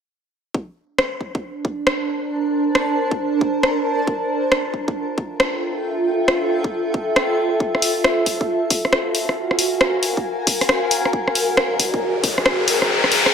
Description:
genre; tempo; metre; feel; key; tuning
UK garage, two-step garage; 136 BPM; 4/4; swing 65% on 16ths; Bb lydian; A4 = 438 Hz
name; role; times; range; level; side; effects
electronic kick drum; drums; 0.5-12.3 s; none; -25 LUFS; equal; high-pass filter on kick
granular cloud pad; texture; 1.6-13.3 s; D4 to Bb5; -20 LUFS; right 1 dB; built-in reverb, sidechain pumping
house drum kit; drums; 1.0-13.3 s; hi-hat, rim click; -19 LUFS; left 1 dB; none
riser; sound effects; 11.5-13.3 s; none; -20 LUFS; left 2 dB; none
room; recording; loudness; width
wet plate reverb, RT60 1.8 s; dreamy mix soaked in reverb; -17 LUFS; side -7 dB against mid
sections
0.5-13.3 A section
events
riser 11.5-13.3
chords
0.5 Bbmaj9; 4.1 Fmaj9; 7.6 Gbmaj9; 11.1 Abmaj9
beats
| 0.55 0.99 1.43 1.87 | 2.31 2.75 3.19 3.63 | 4.07 4.52 4.96 5.40 | 5.84 6.28 6.72 7.16 | 7.60 8.04 8.49 8.93 | 9.37 9.81 10.25 10.69 | 11.13 11.57 12.02 12.46 | 12.90

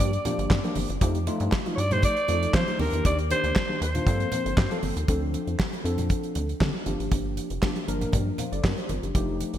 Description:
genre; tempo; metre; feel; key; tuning
early-eighties boogie funk; 118 BPM; 4/4; straight; G minor; A4 = 438 Hz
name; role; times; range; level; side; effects
growling alto saxophone; melody; 0.0-4.8 s; Bb4 to D5; -28 LUFS; equal; ping-pong delay
tine electric piano; accompaniment; 0.0-9.6 s; Eb3 to F5; -30 LUFS; left 1 dB; analog chorus
rubbery square bass; bass; 0.0-9.6 s; F1 to F3; -28 LUFS; equal; none
damped 70s drum kit; drums; 0.0-9.6 s; handclaps, hi-hat, kick drum, snare drum; -27 LUFS; equal; gated reverb
congas; percussion; 0.3-9.5 s; none; -37 LUFS; right 2 dB; none
room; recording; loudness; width
light reverb, small room ambience; bright 1980s-style digital production; -23 LUFS; side -11 dB against mid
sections
0.0-5.1 A section; 5.1-9.6 B section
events
none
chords
0.0 Gm7; 1.0 F9; 2.8 Ebmaj7; 4.1 Gm11; 5.1 Dm7; 6.9 Gm7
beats
0.00 0.51 | 1.01 1.52 2.03 2.54 | 3.05 3.56 4.07 4.57 | 5.08 5.59 6.10 6.61 | 7.12 7.62 8.13 8.64 | 9.15

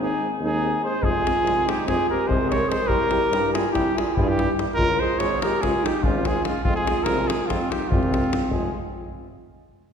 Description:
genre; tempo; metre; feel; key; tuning
balkan folk, Balkan brass band; 289 BPM (eighths); 9/8; straight; F minor; A4 = 440 Hz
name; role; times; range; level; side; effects
mellow cornet; melody; 0.0-8.7 s; F4 to Db5; -24 LUFS; left 1 dB; none
dark clarinet; second line; 0.0-8.7 s; C4 to Bb4; -27 LUFS; right 3 dB; none
clear trombone; accompaniment; 0.0-8.7 s; G3 to Ab3; -33 LUFS; right 3 dB; none
warm euphonium; accompaniment; 0.0-8.7 s; C4 to F4; -31 LUFS; left 2 dB; none
warm tuba; bass; 0.0-8.7 s; F1 to G2; -29 LUFS; equal; none
davul; percussion; 1.0-8.7 s; none; -26 LUFS; left 1 dB; none
room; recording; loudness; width
wet concert hall reverb, RT60 2.0 s; recorded in a church or concert hall; -20 LUFS; side -7 dB against mid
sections
0.0-8.5 A section; 8.5-9.9 B section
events
none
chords
0.0 Ab; 1.0 Fm; 2.9 C; 4.8 Db; 6.6 Fm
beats
0.19 0.40 0.61 0.82 | 1.02 1.23 1.44 1.65 1.86 2.07 2.27 2.48 2.69 | 2.90 3.11 3.32 3.52 3.73 3.94 4.15 4.36 4.56 | 4.77 4.98 5.19 5.39 5.60 5.81 6.02 6.22 6.43 | 6.64 6.85 7.05 7.26 7.47 7.67 7.88 8.09 8.29 | 8.50 8.71

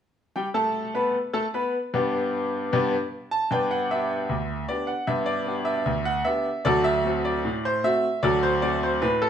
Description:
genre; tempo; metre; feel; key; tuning
ragtime piano; 76 BPM; 2/4; straight; G major; A4 = 440 Hz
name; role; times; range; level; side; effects
bright grand piano; solo; 0.4-9.3 s; D2 to B5; -22 LUFS; equal; none
room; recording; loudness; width
wet stone room reverb, RT60 1.0 s; band playing live in one room; -22 LUFS; side -8 dB against mid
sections
0.3-3.5 A section; 3.5-9.3 B section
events
none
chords
0.3 G; 6.7 D7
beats
| 0.35 1.14 | 1.93 2.72 | 3.51 4.30 | 5.09 5.88 | 6.67 7.46 | 8.24 9.03

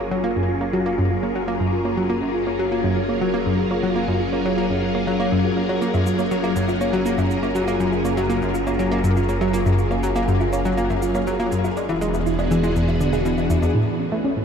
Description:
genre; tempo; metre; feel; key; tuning
ambient, sequencer-driven space music; 121 BPM; 4/4; straight; F# major; A4 = 442 Hz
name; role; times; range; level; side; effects
phased string machine; sustained chords; 0.0-14.4 s; E3 to A#4; -23 LUFS; equal; ensemble chorus, phaser
thumb-piano-like synth pluck; arpeggios; 0.0-14.4 s; E4 to E#5; -28 LUFS; moving between left 2 dB and right 6 dB; chorus, auto-pan, ping-pong delay
analog pluck; riff; 0.0-14.4 s; E2 to C#4; -22 LUFS; left 1 dB; chorus, ping-pong delay
fat analog bass; bass; 0.0-14.4 s; F#1; -30 LUFS; equal; tube saturation
shaker and woodblock; percussion; 5.8-13.7 s; none; -36 LUFS; left 3 dB; overdrive, ping-pong delay
room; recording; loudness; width
wet huge ambient reverb, RT60 7.9 s; dark, warm production; -18 LUFS; side -7 dB against mid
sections
0.0-13.8 A section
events
fade-in on analog synth bass 0.0-13.8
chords
0.0 F#maj7; 11.8 E7; 13.8 Aadd9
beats
0.36 0.86 1.35 | 1.85 2.35 2.84 3.34 | 3.83 4.33 4.83 5.32 | 5.82 6.31 6.81 7.30 | 7.80 8.30 8.79 9.29 | 9.78 10.28 10.78 11.27 | 11.77 12.26 12.76 13.26 | 13.75 14.25

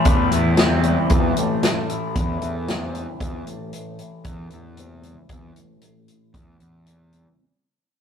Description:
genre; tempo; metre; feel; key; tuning
psychedelic rock; 115 BPM; 4/4; straight; unclear; A4 = 443 Hz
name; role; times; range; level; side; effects
fuzz guitar; riff; 0.0-7.4 s; E3 to B4; -23 LUFS; left 2 dB; distortion, phaser, low-pass filter
vintage drum kit; drums; 0.0-7.2 s; hi-hat, kick drum, snare drum; -21 LUFS; equal; none
fuzz picked electric bass; bass; 0.1-7.2 s; E2; -25 LUFS; left 1 dB; overdrive
room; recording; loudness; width
moderate stone room reverb, RT60 1.3 s; rough rehearsal-room recording, tube saturation; -18 LUFS; side -8 dB against mid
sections
0.0-7.4 A section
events
fade-out 0.0-7.4; filter sweep on distorted electric guitar 0.0-7.4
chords
0.0 Amadd9/E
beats
0.05 0.58 | 1.10 1.62 2.15 2.67 | 3.19 3.72 4.24 4.77 | 5.29 5.81 6.34 6.86

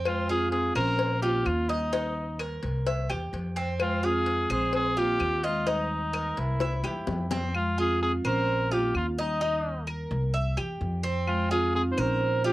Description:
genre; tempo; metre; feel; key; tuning
latin, Cuban son and guajira; 128 BPM; 4/4; straight; F minor; A4 = 442 Hz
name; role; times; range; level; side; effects
Cuban tres; arpeggios; 0.0-12.5 s; C4 to E5; -30 LUFS; right 2 dB; cassette tape
upright bass; bass; 0.0-12.5 s; Bb1 to F2; -31 LUFS; equal; none
warm trumpet; melody; 0.1-12.5 s; Eb4 to C5; -29 LUFS; equal; cassette tape
marimba with medium mallets; second line; 0.1-12.5 s; G3 to Eb4; -34 LUFS; left 1 dB; cassette tape
claves; percussion; 0.1-12.2 s; none; -35 LUFS; left 4 dB; none
cowbell and bongos; percussion; 0.1-7.5 s; none; -35 LUFS; left 5 dB; none
room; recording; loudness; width
light reverb; home recording on cassette; -25 LUFS; side -17 dB against mid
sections
0.0-7.5 A section; 7.5-12.5 A section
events
drum fill 6.6-7.5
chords
0.1 F5; 1.0 Bbsus2; 1.9 Eb; 2.9 C; 3.8 Fm; 4.7 Bbsus2; 5.7 Eb; 6.6 C; 7.5 F5; 8.5 Bbsus2; 9.4 Eb; 10.3 C; 11.3 F5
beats
| 0.06 0.53 0.99 1.46 | 1.93 2.40 2.86 3.33 | 3.80 4.27 4.74 5.20 | 5.67 6.14 6.61 7.07 | 7.54 8.01 8.48 8.94 | 9.41 9.88 10.34 10.81 | 11.28 11.74 12.21

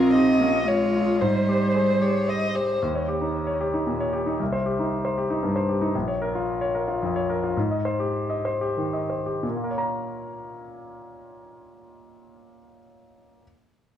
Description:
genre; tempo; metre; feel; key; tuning
neoclassical piano and strings; 89-117 BPM; 3/4; rubato; Bb dorian; A4 = 444 Hz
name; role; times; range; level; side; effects
warm violin; melody; 0.0-2.8 s; Bb4 to Eb5; -27 LUFS; left 4 dB; analog delay
dark cello; second line; 0.0-2.5 s; G3 to C4; -22 LUFS; right 2 dB; analog delay
bright concert grand piano; accompaniment; 0.0-13.4 s; Bb1 to Bb5; -25 LUFS; left 1 dB; none
dark viola; accompaniment; 0.0-2.6 s; Db4 to C5; -27 LUFS; right 2 dB; none
room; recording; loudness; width
wet spring reverb, RT60 1.6 s; cassette tape, small room reverb; -22 LUFS; side -10 dB against mid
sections
0.0-2.8 A section; 2.8-9.4 B section; 9.4-13.4 C section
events
slowing down 5.2-9.4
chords
0.0 Bbm; 1.2 Abmaj7; 2.8 Eb7; 4.4 Cm; 5.9 Bbm; 7.6 Abmaj7; 9.4 Bbm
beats
0.14 0.67 | 1.21 1.75 2.28 | 2.82 3.35 3.87 | 4.40 4.91 5.43 | 5.94 6.47 7.01 | 7.57 8.15 8.76 | 9.43 10.10 10.76 | 11.43 12.09 12.75

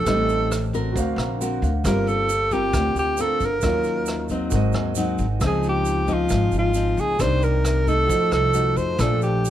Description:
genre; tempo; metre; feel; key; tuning
bossa nova; 134 BPM; 4/4; straight; unclear; A4 = 440 Hz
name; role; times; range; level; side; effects
breathy alto saxophone; melody; 0.0-9.5 s; F4 to C5; -22 LUFS; right 1 dB; none
nylon-string guitar; accompaniment; 0.0-9.5 s; Ab2 to Bb4; -26 LUFS; left 3 dB; none
warm concert grand piano; accompaniment; 0.0-9.5 s; Bb3 to A#5; -31 LUFS; right 5 dB; none
upright bass; bass; 0.0-9.5 s; G1 to F2; -24 LUFS; equal; none
vintage brush drum kit; drums; 0.1-9.5 s; hi-hat, kick drum, rim click; -30 LUFS; equal; none
tube shaker; percussion; 0.1-9.5 s; none; -37 LUFS; right 9 dB; none
room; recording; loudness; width
light reverb; none; -19 LUFS; side -11 dB against mid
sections
0.0-9.5 A section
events
grand piano fill 0.9-1.8, 4.5-5.4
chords
0.1 Am7b5; 0.9 D7alt; 1.8 Gm11; 3.6 Ebm9; 4.5 Ab7; 5.4 Dbmaj9; 7.2 Cm9; 8.1 F7b9; 9.0 Bbmaj7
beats
| 0.06 0.50 0.95 1.40 | 1.84 2.29 2.74 3.18 | 3.63 4.08 4.52 4.97 | 5.42 5.86 6.31 6.76 | 7.20 7.65 8.10 8.54 | 8.99 9.44

